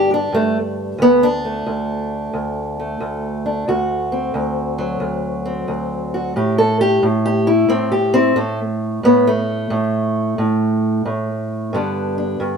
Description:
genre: acoustic country blues, solo or duo.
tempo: 90 BPM.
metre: 4/4.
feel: swing 66% on 8ths.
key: D mixolydian.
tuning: A4 = 440 Hz.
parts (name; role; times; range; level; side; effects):
fingerpicked steel-string acoustic guitar; solo; 0.0-12.6 s; D2 to A4; -16 LUFS; equal; none.
room: wet stone room reverb, RT60 1.1 s.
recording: band playing live in one room.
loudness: -16 LUFS.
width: side -6 dB against mid.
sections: 0.0-12.6 A section.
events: steel-string acoustic guitar solo 0.0-12.6.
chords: 0.0 G5; 1.0 D7; 6.4 A5; 11.7 G.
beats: 0.34 | 1.01 1.68 2.35 3.02 | 3.69 4.36 5.03 5.70 | 6.37 7.04 7.71 8.38 | 9.05 9.72 10.39 11.06 | 11.73 12.40.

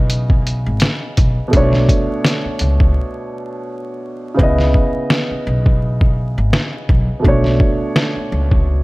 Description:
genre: hip hop, boom-bap hip-hop.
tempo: 84 BPM.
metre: 4/4.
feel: swing 55% on 16ths.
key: C# phrygian.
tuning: A4 = 440 Hz.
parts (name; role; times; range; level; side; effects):
dark baby grand piano; accompaniment; 0.0-8.8 s; B2 to D#5; -20 LUFS; right 1 dB; cassette tape, high-pass filter, low-pass filter.
upright bass; bass; 0.0-8.8 s; G#1 to C#2; -17 LUFS; equal; none.
trip hop sampler-style drum kit; drums; 0.1-8.7 s; hi-hat, kick drum, snare drum; -15 LUFS; equal; none.
room: little or no reverb.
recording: vinyl crackle.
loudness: -13 LUFS.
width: side -22 dB against mid.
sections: 0.0-4.4 A section; 4.4-8.8 A section.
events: break 3.0-4.4; hi-hats muted 4.4-8.8.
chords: 0.0 C#m9; 1.5 Bm9; 4.4 C#m9; 7.2 Bm9.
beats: 0.10 0.81 | 1.53 2.24 2.96 3.67 | 4.39 5.10 5.82 6.53 | 7.24 7.96 8.67.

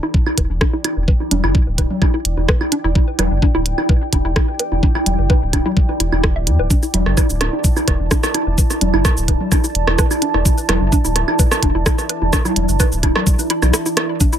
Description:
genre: minimal techno.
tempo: 128 BPM.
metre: 4/4.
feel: straight.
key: E minor.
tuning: A4 = 440 Hz.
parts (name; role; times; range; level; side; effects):
hollow square pluck; riff; 0.0-14.4 s; D4 to E5; -24 LUFS; equal; wide subtle chorus, sidechain pumping, ping-pong delay.
electronic bongos, claves, congas and rim click; percussion; 0.0-14.1 s; none; -21 LUFS; right 1 dB; none.
deep dark ambient pad; texture; 0.0-14.4 s; E4 to A5; -24 LUFS; right 2 dB; chorus, built-in reverb, sidechain pumping.
electronic kick drum; drums; 0.1-14.3 s; none; -16 LUFS; equal; none.
saturated sub bass; bass; 0.4-13.7 s; D1 to E2; -18 LUFS; equal; tube saturation, sidechain pumping.
minimal click drum kit; drums; 0.4-14.4 s; cabasa, hi-hat, rim click; -20 LUFS; right 1 dB; overdrive.
room: little or no reverb.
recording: none.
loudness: -14 LUFS.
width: side -10 dB against mid.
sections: 0.0-14.4 A section.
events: filter sweep on synth arpeggio sound 0.0-14.4; break 13.7-14.2.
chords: 0.0 Em7.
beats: 0.14 0.61 | 1.08 1.55 2.02 2.48 | 2.95 3.42 3.89 4.36 | 4.83 5.30 5.77 6.24 | 6.70 7.17 7.64 8.11 | 8.58 9.05 9.52 9.98 | 10.45 10.92 11.39 11.86 | 12.33 12.80 13.27 13.73 | 14.20.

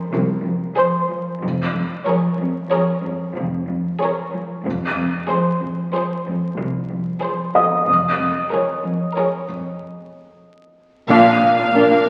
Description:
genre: cinematic, suspense film score.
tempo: 93 BPM.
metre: 5/4.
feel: straight.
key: unclear.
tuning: A4 = 438 Hz.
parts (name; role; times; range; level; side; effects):
felt-muted upright piano; texture; 0.0-1.5, 7.5-11.1 s; Bb4 to Eb6; -24 LUFS; equal; none.
rich studio cello section; riff; 0.1-12.1 s; F2 to Bb3; -25 LUFS; equal; none.
rich studio cello section; bass; 0.1-12.1 s; C2 to Bb2; -28 LUFS; equal; none.
rich studio double bass section; bass; 0.1-12.1 s; F1 to C2; -32 LUFS; equal; none.
rich studio violin section; melody; 0.8-12.1 s; C5 to F5; -24 LUFS; equal; none.
clear studio violin section; second line; 0.8-12.1 s; Ab4 to F5; -25 LUFS; equal; none.
taiko ensemble; drums; 4.7-5.9, 11.1-12.1 s; none; -38 LUFS; equal; none.
rich studio viola section; accompaniment; 11.1-12.0 s; Bb3 to D4; -21 LUFS; equal; none.
dark clarinet; second line; 11.7-12.1 s; Bb4; -17 LUFS; equal; none.
room: wet scoring stage reverb, RT60 1.8 s.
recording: very old 78 rpm record, vinyl crackle.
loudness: -20 LUFS.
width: mono.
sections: 0.0-11.1 A section.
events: break 9.8-11.1; band accent 11.1-11.7.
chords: 0.0 Fm; 1.4 Bbm7/F; 4.6 Fm; 7.9 Bbm7/F; 11.1 Bb.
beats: 0.13 0.78 | 1.42 2.07 2.71 3.36 4.00 | 4.65 5.29 5.94 6.58 7.23 | 7.87 8.52 9.16 9.81 10.45 | 11.10 11.74.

